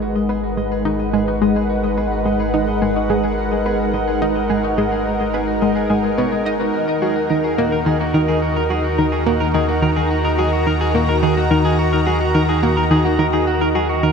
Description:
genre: ambient, sequencer-driven space music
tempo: 107 BPM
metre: 4/4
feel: straight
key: G# minor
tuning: A4 = 442 Hz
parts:
  - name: lush unison pad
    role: sustained chords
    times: 0.0-14.1 s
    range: D#3 to A#5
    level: -19 LUFS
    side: equal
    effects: chorus
  - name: clean electric guitar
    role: arpeggios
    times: 0.0-14.1 s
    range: F#4 to G#5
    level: -26 LUFS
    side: right 1 dB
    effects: auto-pan, ping-pong delay
  - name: warm sub bass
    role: bass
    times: 0.0-14.1 s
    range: G#1 to D#2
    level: -24 LUFS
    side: equal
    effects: none
  - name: analog pluck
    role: riff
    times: 0.3-14.1 s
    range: D#3 to D#5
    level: -20 LUFS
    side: left 1 dB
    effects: chorus, ping-pong delay
room: wet cathedral reverb, RT60 5.4 s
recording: in a vast, echoing space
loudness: -15 LUFS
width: side -6 dB against mid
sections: 0.0-14.1 A section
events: fade-in on clean electric guitar 0.0-14.1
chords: 0.0 G#m7; 6.7 D#m

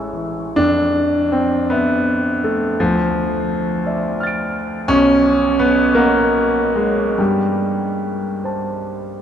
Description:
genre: classical, impressionist solo piano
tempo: 43-59 BPM (dotted quarters)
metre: 6/8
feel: rubato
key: F lydian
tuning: A4 = 441 Hz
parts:
  - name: warm concert grand piano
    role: solo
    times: 0.0-9.2 s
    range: A1 to D7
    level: -15 LUFS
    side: equal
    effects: none
room: wet cathedral reverb, RT60 5.6 s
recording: in a vast, echoing space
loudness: -15 LUFS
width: side -9 dB against mid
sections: 0.6-9.2 A section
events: none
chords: 0.0 Amaj7; 0.6 F5; 2.8 Dmadd9; 4.9 Badd9; 7.2 Gsus24

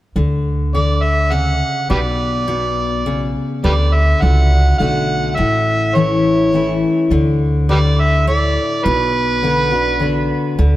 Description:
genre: honky-tonk and classic country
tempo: 104 BPM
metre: 3/4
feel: straight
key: D major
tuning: A4 = 435 Hz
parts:
  - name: picked steel-string acoustic guitar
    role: accompaniment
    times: 0.2-10.8 s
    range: A2 to F#4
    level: -18 LUFS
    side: left 3 dB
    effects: none
  - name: upright bass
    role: bass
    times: 0.2-10.8 s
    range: A1 to D2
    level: -17 LUFS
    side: equal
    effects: none
  - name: overdriven harmonica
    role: melody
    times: 0.7-10.3 s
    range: G4 to F#5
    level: -18 LUFS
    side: right 2 dB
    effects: none
room: moderate plate reverb, RT60 3.5 s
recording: heard from further back in the room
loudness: -13 LUFS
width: side -15 dB against mid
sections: 0.2-7.1 A section; 7.1-10.8 B section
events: none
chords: 0.2 D; 1.9 Bm; 3.6 D; 5.4 A; 7.1 D5; 8.9 Bm

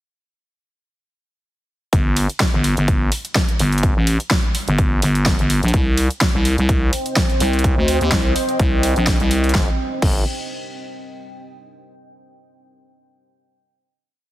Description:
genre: bass house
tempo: 126 BPM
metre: 4/4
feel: swing 54% on 16ths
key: G minor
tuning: A4 = 440 Hz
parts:
  - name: growling FM bass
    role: bass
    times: 1.9-10.2 s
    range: G1 to Eb2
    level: -18 LUFS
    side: equal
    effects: sidechain pumping
  - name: big-room dance drum kit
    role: drums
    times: 1.9-10.1 s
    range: crash cymbal, hi-hat, snare drum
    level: -22 LUFS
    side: equal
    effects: overdrive, studio reverb
  - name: electronic kick drum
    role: drums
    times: 1.9-10.1 s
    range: none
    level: -18 LUFS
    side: equal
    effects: overdrive, studio reverb
  - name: deep dark ambient pad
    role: sustained chords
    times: 6.8-9.8 s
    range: C4 to G5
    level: -25 LUFS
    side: right 1 dB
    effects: chorus, built-in reverb, sidechain pumping
room: little or no reverb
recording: heavily compressed radio sound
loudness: -15 LUFS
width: side -14 dB against mid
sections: 1.9-9.5 drop; 9.5-11.5 final chord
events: drop 1.9-9.5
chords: 1.9 N.C.; 5.7 Cm; 9.5 Gm

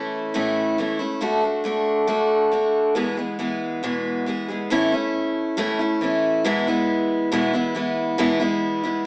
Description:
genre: country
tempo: 138 BPM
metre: 4/4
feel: straight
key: A major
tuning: A4 = 436 Hz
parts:
  - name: picked steel-string acoustic guitar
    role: solo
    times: 0.0-9.1 s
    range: E2 to G#4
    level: -20 LUFS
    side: equal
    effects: none
room: moderate stone room reverb, RT60 1.1 s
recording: band playing live in one room, small speaker sound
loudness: -19 LUFS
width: side -27 dB against mid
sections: 0.0-4.7 A section; 4.7-9.1 B section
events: none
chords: 0.0 A; 1.2 D; 3.0 E; 4.7 A; 6.4 E

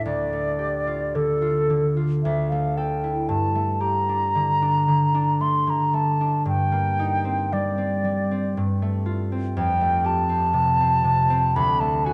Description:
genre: classical, impressionist duo for flute and harp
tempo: 57 BPM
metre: 3/4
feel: uneven beats, rubato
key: unclear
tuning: A4 = 440 Hz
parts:
  - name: bright baroque flute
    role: melody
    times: 0.0-12.1 s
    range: A4 to C6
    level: -25 LUFS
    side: equal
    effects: none
  - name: concert harp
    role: accompaniment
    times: 0.0-12.1 s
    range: D2 to A4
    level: -26 LUFS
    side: equal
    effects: none
room: moderate scoring stage reverb, RT60 1.8 s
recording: dark, warm production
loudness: -22 LUFS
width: mono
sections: 0.0-12.1 A section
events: none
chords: 0.1 Gsus2/D; 2.2 A5/D; 3.3 Gmadd9; 6.5 Cm9/G; 8.5 Dm7/G; 9.6 Fadd9; 11.5 D

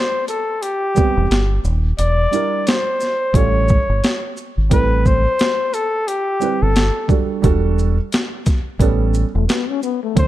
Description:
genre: hip hop, jazz-hop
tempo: 88 BPM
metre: 4/4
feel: swing 60% on 16ths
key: unclear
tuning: A4 = 440 Hz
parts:
  - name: breathy flugelhorn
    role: melody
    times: 0.0-10.3 s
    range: G4 to D5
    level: -20 LUFS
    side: left 2 dB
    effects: none
  - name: boom bap sampler-style drum kit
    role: drums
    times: 0.3-10.3 s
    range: hi-hat, kick drum, shaker, snare drum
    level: -18 LUFS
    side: equal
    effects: overdrive
  - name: dark upright piano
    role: accompaniment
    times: 0.9-10.3 s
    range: B2 to B4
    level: -22 LUFS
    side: right 9 dB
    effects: none
  - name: deep dub fingered electric bass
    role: bass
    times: 1.2-10.3 s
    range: Eb1 to D2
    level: -17 LUFS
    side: equal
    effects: none
  - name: breathy trombone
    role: second line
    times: 9.4-10.3 s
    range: A3 to C#4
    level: -21 LUFS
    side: left 11 dB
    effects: none
room: studio reverb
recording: dark, warm production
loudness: -15 LUFS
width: side -14 dB against mid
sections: 0.0-4.7 A section; 4.7-10.3 B section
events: none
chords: 0.0 Am9 (rootless); 2.0 Em7b5; 3.3 Aaug7; 4.7 Am7; 7.4 Em11; 8.8 A9

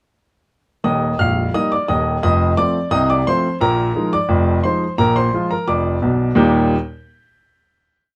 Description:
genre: ragtime piano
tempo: 87 BPM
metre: 2/4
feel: straight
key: Eb major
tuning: A4 = 440 Hz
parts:
  - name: clear baby grand piano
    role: solo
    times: 0.8-6.7 s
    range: Bb0 to G6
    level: -17 LUFS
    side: equal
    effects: none
room: little or no reverb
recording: close, detailed microphones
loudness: -17 LUFS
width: mono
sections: 0.8-6.4 A section; 6.4-7.7 final chord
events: none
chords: 0.8 Eb; 2.2 F7; 3.6 Bb7sus4; 5.0 Bb7; 6.4 Eb

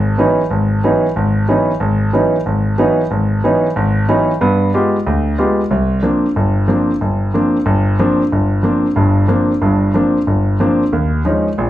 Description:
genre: jazz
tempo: 184 BPM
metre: 4/4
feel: swing 64% on 8ths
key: C minor from 5.7 s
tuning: A4 = 440 Hz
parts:
  - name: warm concert grand piano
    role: solo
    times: 0.0-11.7 s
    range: G1 to G4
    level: -12 LUFS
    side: equal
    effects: none
room: moderate large studio reverb, RT60 1.1 s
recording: band playing live in one room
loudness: -12 LUFS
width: side -13 dB against mid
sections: 0.0-5.7 A section; 5.7-11.7 B section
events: none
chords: 0.0 C#m11; 4.4 G7b9; 5.7 C9sus4; 10.9 Eb9sus4

